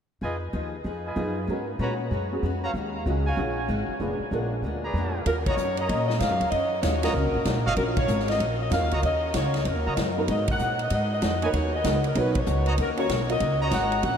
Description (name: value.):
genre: jazz, big band swing.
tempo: 191 BPM.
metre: 4/4.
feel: swing 64% on 8ths.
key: Eb minor.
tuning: A4 = 440 Hz.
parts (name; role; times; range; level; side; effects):
picked steel-string acoustic guitar; accompaniment; 0.2-14.2 s; Bb2 to Cb5; -34 LUFS; left 4 dB; none.
clear trumpet section; stabs; 0.2-14.0 s; F4 to Bb5; -32 LUFS; right 1 dB; tape echo.
upright bass; bass; 0.2-14.2 s; F1 to Bb2; -28 LUFS; equal; none.
warm baby grand piano; accompaniment; 1.2-13.4 s; Cb4 to Db5; -32 LUFS; right 2 dB; ensemble chorus.
warm saxophone section; melody; 5.3-14.2 s; Bb4 to Gb5; -27 LUFS; left 1 dB; tape echo.
swinging big-band drum kit; drums; 5.3-14.1 s; hi-hat, kick drum, ride cymbal, snare drum; -31 LUFS; equal; none.
room: wet huge ambient reverb, RT60 8.0 s.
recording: dreamy mix soaked in reverb.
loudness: -23 LUFS.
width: side -8 dB against mid.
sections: 0.2-5.3 A section; 5.3-14.2 B section.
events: band accent 5.4, 7.9, 10.4, 12.3.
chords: 0.2 Fm7b5; 1.5 Abm11; 2.7 Ebm11; 4.0 Bb7b9; 5.3 Ebm7; 10.3 Abm7; 12.8 Ebm7.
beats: | 0.23 0.54 0.86 1.17 | 1.49 1.80 2.12 2.43 | 2.75 3.06 3.38 3.69 | 4.00 4.32 4.63 4.95 | 5.26 5.58 5.89 6.21 | 6.52 6.83 7.15 7.46 | 7.78 8.09 8.40 8.72 | 9.03 9.35 9.66 9.97 | 10.29 10.60 10.91 11.22 | 11.54 11.85 12.16 12.47 | 12.78 13.10 13.41 13.72 | 14.03.